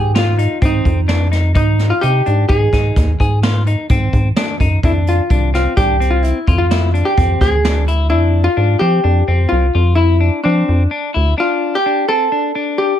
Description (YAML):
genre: progressive instrumental, band music in an uneven meter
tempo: 128 BPM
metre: 7/4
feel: straight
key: unclear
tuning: A4 = 439 Hz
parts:
  - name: vintage hollow-body jazz guitar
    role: melody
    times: 0.0-13.0 s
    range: D4 to A4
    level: -17 LUFS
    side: left 1 dB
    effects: none
  - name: electric guitar at the edge of break-up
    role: arpeggios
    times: 0.0-12.9 s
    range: C4 to Ab4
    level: -22 LUFS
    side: left 4 dB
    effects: none
  - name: rubbery square bass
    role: bass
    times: 0.0-11.3 s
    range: C2 to F3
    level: -14 LUFS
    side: equal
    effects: none
  - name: vintage brush drum kit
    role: drums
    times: 0.2-8.0 s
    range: hi-hat, kick drum, snare drum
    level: -18 LUFS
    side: equal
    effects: none
room: light reverb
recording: none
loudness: -12 LUFS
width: side -10 dB against mid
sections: 0.0-13.0 A section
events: none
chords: 0.0 Ab; 4.8 F5; 11.4 Dm